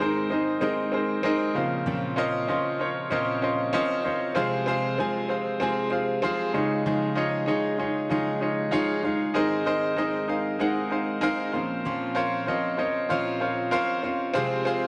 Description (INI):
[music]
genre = pop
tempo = 96 BPM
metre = 4/4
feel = straight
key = unclear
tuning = A4 = 440 Hz
[part]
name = warm grand piano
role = accompaniment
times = 0.0-14.9 s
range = Ab2 to Ab5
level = -27 LUFS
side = equal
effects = none
[part]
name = fingerpicked steel-string acoustic guitar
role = riff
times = 0.0-14.9 s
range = Bb2 to Bb4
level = -32 LUFS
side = equal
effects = none
[sound]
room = moderate plate reverb, RT60 2.7 s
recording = none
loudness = -26 LUFS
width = mono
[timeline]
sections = 0.0-14.9 A section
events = none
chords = 0.0 Abadd9; 1.6 Bbmadd9; 4.4 Fm/C; 6.5 Dbadd9; 9.4 Abadd9; 11.5 Bbmadd9; 14.4 Fm/C